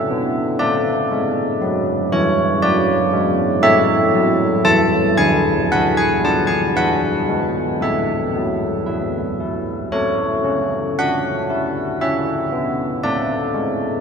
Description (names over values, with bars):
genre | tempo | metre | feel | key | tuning
classical, tune for church bells | 58 BPM | 3/4 | straight | A major | A4 = 440 Hz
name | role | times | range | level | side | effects
carillon bells | solo | 0.0-14.0 s | D3 to A5 | -16 LUFS | equal | none
room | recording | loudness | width
wet cathedral reverb, RT60 5.9 s | none | -16 LUFS | side -6 dB against mid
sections
0.0-14.0 A section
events
none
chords
0.0 N.C.; 0.6 D; 3.6 A; 5.7 Bm/D; 6.7 Esus4; 8.8 E5; 9.9 A; 13.0 D5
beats
| 0.58 1.60 2.61 | 3.61 4.63 5.67 | 6.72 7.77 8.82 | 9.88 10.95 11.99 | 13.02